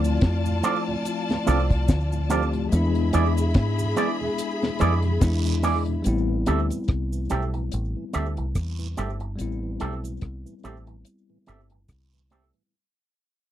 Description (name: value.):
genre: lovers rock reggae.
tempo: 72 BPM.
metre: 4/4.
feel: swing 57% on 16ths.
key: A minor.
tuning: A4 = 440 Hz.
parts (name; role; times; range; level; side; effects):
warm studio string section; second line; 0.0-6.0 s; F4 to B5; -31 LUFS; left 3 dB; none.
bell-like tine electric piano; accompaniment; 0.0-12.7 s; F3 to G4; -29 LUFS; left 4 dB; medium stereo tremolo, slapback echo.
tonewheel organ; accompaniment; 0.0-12.6 s; D2 to D4; -35 LUFS; right 10 dB; stopped rotary speaker, slapback echo.
deep dub fingered electric bass; bass; 0.0-12.5 s; G1 to G#2; -24 LUFS; equal; none.
deep reggae drum kit; drums; 0.0-12.7 s; hi-hat, kick drum, rim click, snare drum; -22 LUFS; equal; none.
cabasa and guiro; percussion; 0.0-12.5 s; none; -40 LUFS; right 8 dB; slapback echo.
electric guitar with an envelope filter; stabs; 0.6-12.4 s; B3 to E5; -26 LUFS; right 4 dB; none.
room: little or no reverb.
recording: dry, close 1970s-style studio recording.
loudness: -22 LUFS.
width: side -12 dB against mid.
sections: 0.0-6.0 A section; 6.0-12.7 B section.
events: fade-out 6.0-12.7.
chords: 0.0 Dm7; 2.7 E7; 6.0 Am7.